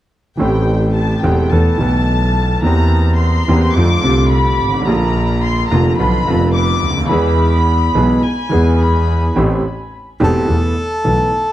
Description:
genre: tango.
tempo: 107 BPM.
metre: 4/4.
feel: rubato.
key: A minor.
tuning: A4 = 438 Hz.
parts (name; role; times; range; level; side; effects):
dark chamber violin section; second line; 0.4-9.4 s; G5 to D6; -20 LUFS; left 2 dB; analog delay.
clear concert grand piano; accompaniment; 0.4-11.3 s; E1 to A4; -16 LUFS; right 1 dB; none.
clear double bass; bass; 0.4-11.3 s; E1 to F2; -16 LUFS; equal; none.
bandoneon; melody; 10.2-11.5 s; A4; -17 LUFS; equal; none.
room: moderate large studio reverb, RT60 1.1 s.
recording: dark, warm production.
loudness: -12 LUFS.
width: side -13 dB against mid.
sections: 0.4-9.4 A section; 9.4-11.5 B section.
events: none.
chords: 0.4 Am7; 1.5 Esus4; 2.6 C7/E; 3.8 F6; 4.9 Bb; 6.0 Bdim; 7.1 E; 9.4 Am7; 10.5 Esus4.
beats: | 0.39 0.95 1.51 2.07 | 2.63 3.19 3.76 4.32 | 4.87 5.43 5.99 6.55 | 7.11 7.67 8.24 8.80 | 9.37 9.93 10.49 11.05.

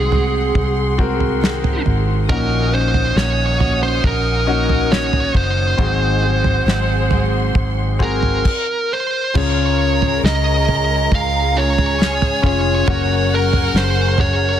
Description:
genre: pop ballad.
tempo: 69 BPM.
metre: 4/4.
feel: straight.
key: Db major.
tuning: A4 = 440 Hz.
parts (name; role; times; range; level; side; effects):
fuzz lead guitar; melody; 0.0-14.6 s; Ab4 to F5; -20 LUFS; right 2 dB; distortion, ping-pong delay.
clear concert grand piano; accompaniment; 0.0-14.6 s; Ab2 to Bb4; -24 LUFS; left 8 dB; none.
warm studio string section; sustained chords; 0.0-14.6 s; Db3 to Eb6; -28 LUFS; left 2 dB; none.
picked steel-string acoustic guitar; arpeggios; 0.0-14.6 s; Ab2 to Bb4; -26 LUFS; right 8 dB; none.
vintage muted fingered electric bass; bass; 0.0-14.6 s; F1 to Db2; -19 LUFS; equal; none.
damped 70s drum kit; drums; 0.1-14.4 s; crash cymbal, kick drum, snare drum, toms; -19 LUFS; right 1 dB; none.
bright studio violin section; second line; 9.3-14.6 s; Gb4 to Bb5; -25 LUFS; equal; none.
room: light reverb, studio ambience.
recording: dense, heavily limited modern master.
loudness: -14 LUFS.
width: side -10 dB against mid.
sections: 0.0-9.4 A section; 9.4-14.6 B section.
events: none.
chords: 0.0 Ab7/C; 2.3 Ebm7/Bb; 5.8 Ab7; 9.4 Db; 12.9 Gb.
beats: 0.55 1.42 | 2.29 3.17 4.04 4.91 | 5.79 6.67 7.55 8.45 | 9.35 10.24 11.12 12.00 | 12.88 13.74.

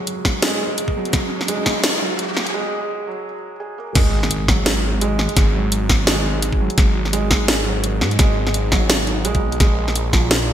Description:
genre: half-time drum and bass.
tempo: 170 BPM.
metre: 4/4.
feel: swing 56% on 16ths, half-time.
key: unclear.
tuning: A4 = 438 Hz.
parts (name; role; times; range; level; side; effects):
felt-muted upright piano; arpeggios; 0.0-10.5 s; E#3 to G#4; -24 LUFS; right 3 dB; vintage 12-bit sampler grit, low-pass filter, ping-pong delay.
riser and impact; sound effects; 0.0-5.4 s; none; -28 LUFS; equal; none.
drum and bass drum kit; drums; 0.1-10.4 s; crash cymbal, hi-hat, snare drum; -20 LUFS; equal; gated reverb.
electronic kick drum; drums; 0.2-1.7, 4.0-10.2 s; none; -17 LUFS; equal; none.
phased detuned saw bass; bass; 4.0-10.5 s; G#1 to G#2; -21 LUFS; equal; phaser.
room: light reverb.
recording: bright 1980s-style digital production, high-pass filter.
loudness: -16 LUFS.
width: side -10 dB against mid.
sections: 0.0-4.0 A section; 4.0-10.5 B section.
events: build-up 0.0-4.0; riser 0.0-2.5; filter sweep 0.0-4.0; break 2.5-4.0; drop 4.0-10.5; impact 4.0-5.4.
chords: 0.0 F#sus2; 4.0 N.C.; 9.6 A#5.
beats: 0.07 0.43 0.78 | 1.13 1.49 1.84 2.19 | 2.54 2.90 3.25 3.60 | 3.96 4.31 4.66 5.01 | 5.37 5.72 6.07 6.43 | 6.78 7.13 7.49 7.84 | 8.19 8.54 8.90 9.25 | 9.60 9.96 10.31.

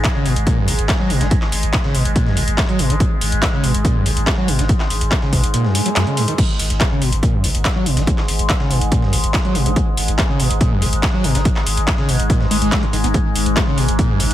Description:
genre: driving peak-time techno.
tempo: 142 BPM.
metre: 4/4.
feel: straight.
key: G# minor.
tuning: A4 = 441 Hz.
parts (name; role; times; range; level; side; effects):
screaming distorted acid line; riff; 0.0-14.3 s; G#1 to B3; -21 LUFS; equal; distortion, wide subtle chorus, sidechain pumping, digital delay.
warm sub bass; bass; 0.0-14.3 s; G#1; -20 LUFS; equal; overdrive, sidechain pumping, low-pass filter.
overtone-sweeping drone; drone; 0.0-14.3 s; G#2 to G#3; -24 LUFS; left 1 dB; chorus, built-in reverb, phaser, sidechain pumping.
dusty soul sampler-style drum kit; drums; 0.0-14.3 s; hi-hat, snare drum; -32 LUFS; right 1 dB; none.
electronic kick drum; drums; 0.0-14.1 s; none; -18 LUFS; equal; overdrive.
techno drum kit; drums; 0.0-14.3 s; crash cymbal, handclaps, hi-hat; -22 LUFS; equal; sidechain pumping on hats, sidechain pumping on cymbals.
swell; sound effects; 5.7-6.4 s; none; -27 LUFS; right 8 dB; none.
room: digital ambience.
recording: none.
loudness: -14 LUFS.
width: side -12 dB against mid.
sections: 0.0-14.3 A section.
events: swell 5.7-6.4.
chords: 0.0 G#m.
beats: 0.04 0.47 0.89 | 1.31 1.74 2.16 2.58 | 3.00 3.42 3.85 4.27 | 4.69 5.12 5.54 5.96 | 6.38 6.80 7.23 7.65 | 8.07 8.50 8.92 9.34 | 9.76 10.19 10.61 11.03 | 11.45 11.88 12.30 12.72 | 13.14 13.57 13.99.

